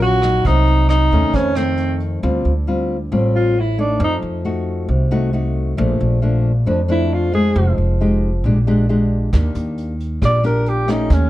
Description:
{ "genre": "bossa nova", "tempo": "135 BPM", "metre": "4/4", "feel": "straight", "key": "D minor", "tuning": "A4 = 441 Hz", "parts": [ { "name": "breathy alto saxophone", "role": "melody", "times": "0.0-4.2, 6.9-11.3 s", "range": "C4 to D5", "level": "-18 LUFS", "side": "right 1 dB", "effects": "none" }, { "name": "nylon-string guitar", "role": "accompaniment", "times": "0.0-11.3 s", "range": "F2 to G4", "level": "-20 LUFS", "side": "left 2 dB", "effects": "none" }, { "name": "upright bass", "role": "bass", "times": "0.0-11.3 s", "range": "F1 to F2", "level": "-18 LUFS", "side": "equal", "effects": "none" }, { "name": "vintage brush drum kit", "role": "drums", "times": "0.0-2.1, 9.3-11.2 s", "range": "hi-hat, kick drum, rim click", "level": "-23 LUFS", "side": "equal", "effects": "none" } ], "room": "light reverb", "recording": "dark, warm production", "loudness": "-15 LUFS", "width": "side -15 dB against mid", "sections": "0.0-2.2 A section; 2.2-11.3 B section", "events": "alto saxophone solo 2.2-11.3", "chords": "0.4 Cm7b5; 1.3 F7b13; 2.2 Dm7; 4.0 F7b9; 5.8 Bbmaj7; 7.6 Fm9; 8.4 Bb6; 9.3 Ebmaj7", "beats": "0.01 | 0.45 0.89 1.34 1.78 | 2.23 2.67 3.11 3.56 | 4.00 4.45 4.89 5.33 | 5.78 6.22 6.67 7.11 | 7.55 8.00 8.44 8.88 | 9.33 9.77 10.21 10.66 | 11.10" }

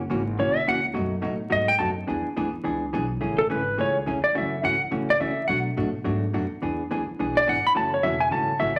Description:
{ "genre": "country, western swing", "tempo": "212 BPM", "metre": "4/4", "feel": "swing 61% on 8ths", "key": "A major", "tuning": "A4 = 441 Hz", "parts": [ { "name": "hollow-body jazz guitar", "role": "accompaniment", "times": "0.0-8.7 s", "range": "B2 to G#4", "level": "-30 LUFS", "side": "equal", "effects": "none" }, { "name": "upright bass", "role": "bass", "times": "0.0-8.8 s", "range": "E1 to C#3", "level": "-34 LUFS", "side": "equal", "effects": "none" }, { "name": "clean lap steel guitar", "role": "melody", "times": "0.4-8.8 s", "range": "A4 to B5", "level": "-25 LUFS", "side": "equal", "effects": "none" } ], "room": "wet large studio reverb, RT60 0.9 s", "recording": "vinyl crackle", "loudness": "-25 LUFS", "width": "mono", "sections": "0.0-3.2 A section; 3.2-8.8 A section", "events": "electric slide guitar solo 0.0-3.2, 3.2-8.8", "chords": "0.0 F#7; 1.0 B7/F#; 2.1 E7; 3.2 Amaj7; 4.4 F#m7; 5.5 Bm7; 6.6 E7; 7.8 F#m7", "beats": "0.11 0.39 0.68 | 0.96 1.24 1.52 1.81 | 2.09 2.37 2.66 2.94 | 3.22 3.51 3.79 4.07 | 4.36 4.64 4.92 5.21 | 5.49 5.78 6.06 6.34 | 6.62 6.91 7.19 7.48 | 7.76 8.04 8.32 8.61" }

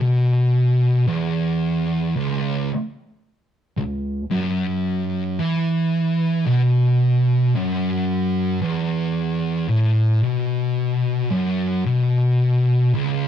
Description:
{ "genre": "metal", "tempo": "56 BPM", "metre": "4/4", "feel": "straight", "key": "unclear", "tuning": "A4 = 440 Hz", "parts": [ { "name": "thick fuzz guitar", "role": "solo", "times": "0.0-13.3 s", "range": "C#2 to E3", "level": "-18 LUFS", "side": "equal", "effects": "distortion" } ], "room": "light reverb", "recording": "rough rehearsal-room recording, warm saturation", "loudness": "-18 LUFS", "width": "side -9 dB against mid", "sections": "0.0-13.3 A section", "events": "none", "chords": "none", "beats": "| 0.02 1.09 2.17 3.25 | 4.32 5.40 6.47 7.55 | 8.63 9.70 10.78 11.86 | 12.94" }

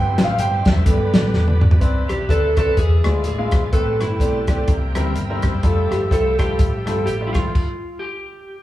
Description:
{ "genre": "uptempo gospel", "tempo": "126 BPM", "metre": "4/4", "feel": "swing 58% on 8ths", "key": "C major", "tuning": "A4 = 439 Hz", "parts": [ { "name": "bright grand piano", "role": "accompaniment", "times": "0.0-7.4 s", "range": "A2 to G5", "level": "-23 LUFS", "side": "equal", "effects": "none" }, { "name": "bright tonewheel organ", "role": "sustained chords", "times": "0.0-7.5 s", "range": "E3 to G5", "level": "-32 LUFS", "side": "right 1 dB", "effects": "slow rotary speaker, chorus vibrato" }, { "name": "dark studio string section", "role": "sustained chords", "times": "0.0-7.5 s", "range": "B3 to G5", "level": "-34 LUFS", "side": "left 2 dB", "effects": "none" }, { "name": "fingered electric bass", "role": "bass", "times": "0.0-7.5 s", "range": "E1 to E2", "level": "-21 LUFS", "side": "equal", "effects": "none" }, { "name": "warm soul drum kit", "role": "drums", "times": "0.2-7.7 s", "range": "crash cymbal, hi-hat, kick drum, rim click, snare drum, toms", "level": "-19 LUFS", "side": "equal", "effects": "none" }, { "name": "electric slide guitar", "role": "melody", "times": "2.1-8.6 s", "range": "E4 to A4", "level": "-23 LUFS", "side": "equal", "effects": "none" } ], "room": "wet large studio reverb, RT60 1.3 s", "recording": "band playing live in one room, small room ambience", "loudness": "-16 LUFS", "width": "side -14 dB against mid", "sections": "0.0-1.8 A section; 1.8-8.6 B section", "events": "grand piano solo 0.0-1.8; drum fill 1.3-1.8; tonewheel organ fill 4.7-5.6; stop 7.6-8.6", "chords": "0.0 C/G; 0.9 G; 1.8 Cmaj9; 2.8 E7b9; 3.7 Am9; 4.7 C7; 5.6 Fmaj9; 7.6 N.C.", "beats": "0.38 0.86 1.34 | 1.81 2.29 2.77 3.25 | 3.72 4.20 4.68 5.16 | 5.64 6.12 6.60 7.07 | 7.55 8.03 8.51" }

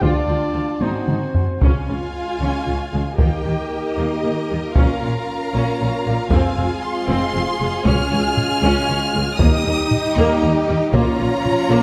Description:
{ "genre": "cinematic, epic orchestral film score", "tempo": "77 BPM (dotted quarters)", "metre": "6/8", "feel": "straight", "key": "unclear", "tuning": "A4 = 443 Hz", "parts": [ { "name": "warm studio violin section", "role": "melody", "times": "0.0-11.8 s", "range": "Eb5 to F6", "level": "-30 LUFS", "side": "equal", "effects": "none" }, { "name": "warm symphonic violin section", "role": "second line", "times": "0.0-11.8 s", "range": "F4 to Ab5", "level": "-28 LUFS", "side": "equal", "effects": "none" }, { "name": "warm symphonic viola section", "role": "accompaniment", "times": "0.0-11.8 s", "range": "G3 to G4", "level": "-26 LUFS", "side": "equal", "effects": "none" }, { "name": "mellow French horn section", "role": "sustained chords", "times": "0.0-11.8 s", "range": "F3 to F4", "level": "-28 LUFS", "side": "equal", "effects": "none" }, { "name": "clear trumpet", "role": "stabs", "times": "0.0-1.6 s", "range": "B#4 to D5", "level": "-29 LUFS", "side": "equal", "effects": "none" }, { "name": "warm chamber cello section", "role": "bass", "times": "0.0-11.8 s", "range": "Db2 to Eb3", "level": "-27 LUFS", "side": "equal", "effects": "none" }, { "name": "warm studio double bass section", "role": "bass", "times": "0.0-11.8 s", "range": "F1 to Eb2", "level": "-27 LUFS", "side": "equal", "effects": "none" }, { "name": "taiko ensemble", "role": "drums", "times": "0.0-11.7 s", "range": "none", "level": "-22 LUFS", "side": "equal", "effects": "none" } ], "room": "moderate scoring stage reverb, RT60 2.0 s", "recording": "none", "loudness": "-19 LUFS", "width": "mono", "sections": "0.0-1.6 A section; 1.6-11.8 B section", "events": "drum fill 0.8-1.6", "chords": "0.0 Dm; 0.8 G#7; 1.6 Db; 3.2 Eb; 4.8 Bbm; 6.3 Fm; 7.9 Db; 9.4 Eb; 10.9 Bbm", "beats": "| 0.02 0.81 | 1.62 2.41 | 3.19 3.97 | 4.76 5.54 | 6.31 7.08 | 7.86 8.63 | 9.40 10.17 | 10.95 11.72" }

